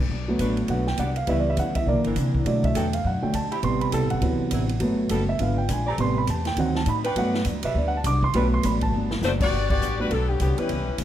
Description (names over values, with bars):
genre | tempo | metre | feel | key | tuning
jazz, big band swing | 204 BPM | 4/4 | swing 61% on 8ths | G major | A4 = 440 Hz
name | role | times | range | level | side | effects
upright bass | bass | 0.0-11.0 s | F#1 to C3 | -26 LUFS | equal | none
picked acoustic archtop guitar | accompaniment | 0.1-11.0 s | G2 to B4 | -34 LUFS | left 4 dB | none
swinging big-band drum kit | drums | 0.1-11.0 s | crash cymbal, hi-hat, kick drum, ride cymbal, snare drum | -31 LUFS | equal | none
warm grand piano | accompaniment | 0.3-10.7 s | C3 to D6 | -25 LUFS | right 2 dB | none
mellow saxophone section | sustained chords | 0.4-8.5 s | E3 to D5 | -33 LUFS | equal | none
bright saxophone section | melody | 9.2-11.0 s | D3 to D5 | -25 LUFS | left 4 dB | none
room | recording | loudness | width
light reverb | none | -21 LUFS | side -11 dB against mid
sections
0.1-9.5 A section; 9.5-11.0 B section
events
grand piano solo 0.1-9.5; drum fill 8.9; band accent 9.7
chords
0.1 Gmaj7; 1.3 C#m7b5; 1.9 C9; 2.5 Bm7; 3.6 Am7; 4.2 D13; 4.8 Gmaj9; 5.4 G#dim7; 6.0 Am9; 6.6 D7b9; 7.2 Gmaj7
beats
| 0.10 0.40 0.69 0.98 | 1.28 1.57 1.87 2.16 | 2.46 2.75 3.05 3.34 | 3.64 3.93 4.22 4.52 | 4.81 5.11 5.40 5.70 | 5.99 6.28 6.58 6.87 | 7.17 7.46 7.75 8.05 | 8.34 8.63 8.93 9.22 | 9.51 9.81 10.10 10.39 | 10.69 10.98